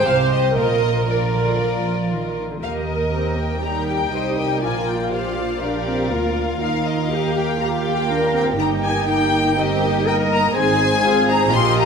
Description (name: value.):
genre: quick classical-period movement for string orchestra.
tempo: 121 BPM.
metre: 4/4.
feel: straight.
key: Eb major.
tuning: A4 = 441 Hz.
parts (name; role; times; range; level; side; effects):
rich studio violin section; melody; 0.0-11.9 s; D5 to C6; -24 LUFS; left 4 dB; none.
clear studio violin section; second line; 0.0-11.9 s; F4 to G5; -25 LUFS; left 3 dB; none.
warm studio viola section; accompaniment; 0.0-11.9 s; G3 to C5; -23 LUFS; right 2 dB; none.
warm studio cello section; bass; 0.0-11.9 s; Bb2 to Bb4; -24 LUFS; right 1 dB; none.
warm studio double bass section; bass; 0.0-11.9 s; G1 to Eb2; -24 LUFS; right 4 dB; none.
room: wet concert hall reverb, RT60 2.0 s.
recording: none.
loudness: -17 LUFS.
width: side -6 dB against mid.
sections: 0.0-2.6 A section; 2.6-11.9 B section.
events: none.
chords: 0.0 Ab (rootless); 0.6 Bb; 2.6 Eb; 4.6 Bb; 6.6 Eb; 8.6 Eb/G; 10.6 Ab.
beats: 0.07 | 0.57 1.08 1.60 2.11 | 2.62 3.13 3.63 4.13 | 4.62 5.12 5.62 6.12 | 6.62 7.12 7.61 8.11 | 8.60 9.09 9.58 10.07 | 10.56 11.04 11.53.